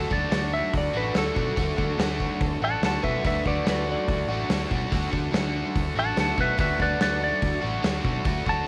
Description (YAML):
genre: garage rock duo or trio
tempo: 144 BPM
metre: 4/4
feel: straight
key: unclear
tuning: A4 = 440 Hz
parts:
  - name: clean lap steel guitar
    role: melody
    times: 0.0-8.7 s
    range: A4 to A5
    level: -29 LUFS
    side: equal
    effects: none
  - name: combo organ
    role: sustained chords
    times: 0.0-8.7 s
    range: D4 to A4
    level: -40 LUFS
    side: equal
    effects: none
  - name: overdriven electric guitar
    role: riff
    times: 0.0-8.7 s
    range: D3 to F#4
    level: -32 LUFS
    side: equal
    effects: none
  - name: hollow-body short-scale picked electric bass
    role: bass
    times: 0.0-8.6 s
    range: A1 to B2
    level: -33 LUFS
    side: equal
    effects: none
  - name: oversized low-tuned drum kit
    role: drums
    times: 0.1-8.6 s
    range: hi-hat, kick drum, snare drum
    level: -31 LUFS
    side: equal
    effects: none
room: small room ambience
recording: none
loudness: -25 LUFS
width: mono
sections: 0.0-8.7 A section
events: none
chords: 0.0 D